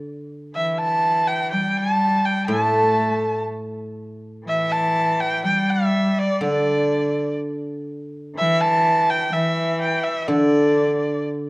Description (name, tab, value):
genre	chinese traditional, Chinese chamber ensemble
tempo	62 BPM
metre	2/4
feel	rubato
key	unclear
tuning	A4 = 439 Hz
part	guzheng	accompaniment	0.0-11.5 s	A2 to D3	-23 LUFS	equal	none
part	rich erhu	melody	0.6-11.3 s	D5 to A5	-20 LUFS	equal	none
part	rich cello	second line	0.6-11.3 s	D3 to A3	-24 LUFS	left 1 dB	none
room	moderate recital hall reverb, RT60 1.7 s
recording	worn, warbling old tape, cassette tape, warbly pitch drift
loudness	-18 LUFS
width	side -23 dB against mid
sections	0.0-11.5 A section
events	none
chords	none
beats	| 0.55 1.52 | 2.49 3.47 | 4.46 5.44 | 6.42 7.40 | 8.37 9.33 | 10.29 11.27